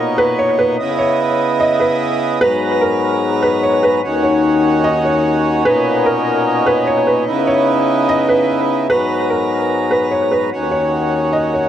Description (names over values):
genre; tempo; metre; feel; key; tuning
hip hop; 148 BPM; 4/4; half-time; G# minor; A4 = 440 Hz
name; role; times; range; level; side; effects
felt-muted upright piano; melody; 0.0-11.7 s; A#4 to D#5; -17 LUFS; equal; analog delay
pedal harmonium; sustained chords; 0.0-11.7 s; D#2 to A#5; -15 LUFS; equal; none
room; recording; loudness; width
light reverb, small room ambience; echo-heavy mix; -13 LUFS; side -10 dB against mid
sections
0.0-8.9 A section; 8.9-11.7 B section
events
none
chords
0.0 Bmaj9; 0.8 C#m9; 2.4 G#m9; 4.0 D#m7; 5.7 Bmaj9; 7.3 C#m9; 8.9 G#m9; 10.5 D#m7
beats
0.38 | 0.79 1.19 1.60 2.00 | 2.41 2.82 3.22 3.63 | 4.03 4.44 4.84 5.25 | 5.65 6.06 6.46 6.87 | 7.28 7.68 8.09 8.49 | 8.90 9.30 9.71 10.11 | 10.52 10.92 11.33